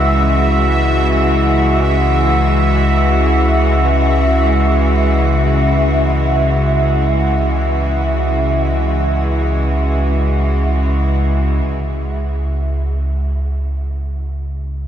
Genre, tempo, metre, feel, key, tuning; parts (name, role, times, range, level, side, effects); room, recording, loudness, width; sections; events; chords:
dark ambient drone; free time; C# minor; A4 = 438 Hz
clear studio cello section; sustained chords; 0.0-11.7 s; C#3 to F#4; -17 LUFS; equal; shimmer reverb
deep rumbling drone; drone; 0.0-14.9 s; C#2 to C#3; -16 LUFS; equal; built-in reverb
bubbling stepped-filter texture; texture; 0.0-11.7 s; E5; -21 LUFS; right 2 dB; chorus, built-in reverb, shimmer reverb
wet huge ambient reverb, RT60 8.0 s; cassette tape; -13 LUFS; side -9 dB against mid
0.0-11.6 A section; 11.6-14.9 A section
0.0 C#m; 11.6 N.C.